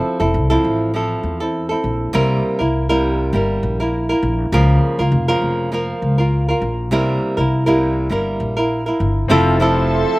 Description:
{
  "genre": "pop",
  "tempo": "100 BPM",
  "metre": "4/4",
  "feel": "swing 55% on 16ths",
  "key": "F major",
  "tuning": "A4 = 440 Hz",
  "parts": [
    { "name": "flamenco guitar", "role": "accompaniment", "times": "0.0-10.2 s", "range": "C3 to Bb4", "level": "-18 LUFS", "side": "right 1 dB", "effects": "slapback echo" },
    { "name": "upright bass", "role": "bass", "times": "0.2-10.0 s", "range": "F1 to E2", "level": "-19 LUFS", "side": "left 1 dB", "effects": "none" },
    { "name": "clear concert grand piano", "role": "accompaniment", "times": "9.3-10.2 s", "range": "C4 to E5", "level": "-22 LUFS", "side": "left 6 dB", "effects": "none" },
    { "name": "glassy FM pad", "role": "sustained chords", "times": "9.6-10.2 s", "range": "A4 to C6", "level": "-21 LUFS", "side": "right 3 dB", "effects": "ensemble chorus, built-in reverb" }
  ],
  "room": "little or no reverb",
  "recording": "recorded outdoors, with no room sound",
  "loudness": "-15 LUFS",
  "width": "side -20 dB against mid",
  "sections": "0.0-9.3 A section",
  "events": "none",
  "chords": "0.0 Fmaj7; 2.1 C7; 4.5 Bbm; 6.9 C7; 9.3 Fmaj7"
}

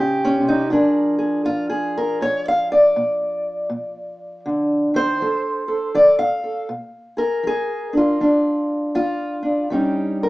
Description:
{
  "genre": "acoustic country blues, solo or duo",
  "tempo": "80 BPM",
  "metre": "4/4",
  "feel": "swing 63% on 8ths",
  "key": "Bb mixolydian",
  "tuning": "A4 = 441 Hz",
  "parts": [
    { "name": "fingerpicked steel-string acoustic guitar", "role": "solo", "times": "0.0-10.3 s", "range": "Bb2 to F5", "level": "-17 LUFS", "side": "equal", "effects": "none" }
  ],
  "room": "moderate studio reverb, RT60 0.8 s",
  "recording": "band playing live in one room, small speaker sound",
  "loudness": "-17 LUFS",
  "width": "side -19 dB against mid",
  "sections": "0.0-6.7 A section; 6.7-10.3 A section",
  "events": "none",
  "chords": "0.0 Eb7; 0.7 Bb7; 5.2 F; 6.7 Bb7; 9.7 Eb7"
}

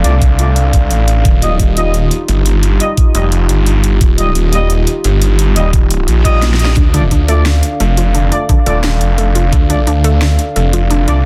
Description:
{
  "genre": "dark technical drum and bass",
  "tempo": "174 BPM",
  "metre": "4/4",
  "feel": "straight",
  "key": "D phrygian",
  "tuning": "A4 = 440 Hz",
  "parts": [
    { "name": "dark analog pad", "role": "sustained chords", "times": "0.0-11.3 s", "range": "D4 to F5", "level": "-23 LUFS", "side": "equal", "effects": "chorus, sidechain pumping" },
    { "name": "mellow brass ensemble", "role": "stabs", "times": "0.0-11.2 s", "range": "G3 to Eb5", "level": "-22 LUFS", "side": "equal", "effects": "vintage 12-bit sampler grit, low-pass filter, dub echo" },
    { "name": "snarling distorted saw bass", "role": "bass", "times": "0.0-11.3 s", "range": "Eb1 to D2", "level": "-14 LUFS", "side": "equal", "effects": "distortion, overdrive, sidechain pumping" },
    { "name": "drum and bass drum kit", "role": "drums", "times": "0.0-11.1 s", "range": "hi-hat, snare drum", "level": "-23 LUFS", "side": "equal", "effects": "overdrive" },
    { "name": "electronic kick drum", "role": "drums", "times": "0.2-9.6 s", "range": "none", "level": "-13 LUFS", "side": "equal", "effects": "none" },
    { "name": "reverse cymbal", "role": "sound effects", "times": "6.2-6.8 s", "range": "none", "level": "-29 LUFS", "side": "equal", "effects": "none" },
    { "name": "analog pluck", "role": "arpeggios", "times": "6.8-11.2 s", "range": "D3 to A3", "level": "-22 LUFS", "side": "equal", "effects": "chorus, cassette tape, sidechain pumping, dub echo" }
  ],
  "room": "little or no reverb",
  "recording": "dense, heavily limited modern master",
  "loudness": "-12 LUFS",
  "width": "mono",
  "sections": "0.0-11.3 A section",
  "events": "reverse cymbal 6.2-6.8; drum fill 6.4-6.8",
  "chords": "0.0 Dm; 1.2 Ebadd9; 6.8 Dm"
}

